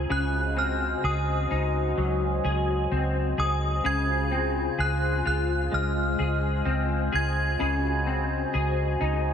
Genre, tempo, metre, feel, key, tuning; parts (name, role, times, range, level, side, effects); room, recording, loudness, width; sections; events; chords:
dream pop; 64 BPM; 4/4; straight; Db major; A4 = 440 Hz
synth chime; melody; 0.0-9.3 s; Eb6 to Ab6; -30 LUFS; right 1 dB; ensemble chorus, ping-pong delay
warbly tape-like pad; sustained chords; 0.0-9.3 s; F4 to Ab5; -30 LUFS; left 2 dB; chorus, built-in reverb, phaser
semi-hollow electric guitar; arpeggios; 0.0-9.3 s; Db3 to Ab4; -30 LUFS; left 3 dB; ensemble chorus, ping-pong delay
vintage muted fingered electric bass; bass; 0.0-9.3 s; Db2; -27 LUFS; right 1 dB
moderate huge ambient reverb, RT60 4.5 s; nothing above 10.8 kHz; -23 LUFS; side -8 dB against mid
0.0-9.3 A section
0.1 Ab7/Db